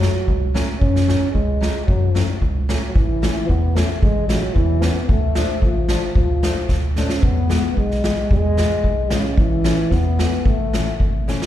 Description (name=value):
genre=alpine folk, alpine dance band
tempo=112 BPM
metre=2/4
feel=straight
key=A major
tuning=A4 = 441 Hz
part: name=mellow euphonium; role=melody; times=0.0-11.0 s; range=C#3 to C#4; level=-22 LUFS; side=equal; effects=ping-pong delay
part: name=fingerpicked steel-string acoustic guitar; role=accompaniment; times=0.0-11.4 s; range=E3 to D4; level=-28 LUFS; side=left 4 dB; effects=none
part: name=rubbery square bass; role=bass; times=0.0-11.4 s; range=G#1 to F#2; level=-21 LUFS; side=equal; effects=none
part: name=street-band drum kit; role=drums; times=0.0-11.5 s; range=hi-hat, kick drum, snare drum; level=-20 LUFS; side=equal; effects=none
room=light reverb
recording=played on a big sound system in a bare room, large studio reverb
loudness=-16 LUFS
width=side -12 dB against mid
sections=0.0-3.0 A section; 3.0-11.5 B section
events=drum fill 6.7-7.2, 11.3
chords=0.0 F#m; 3.0 A; 5.1 Dm; 7.2 E; 9.4 A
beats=0.28 | 0.81 1.35 | 1.88 2.42 | 2.96 3.49 | 4.03 4.56 | 5.09 5.62 | 6.15 6.69 | 7.23 7.77 | 8.30 8.84 | 9.37 9.91 | 10.45 10.99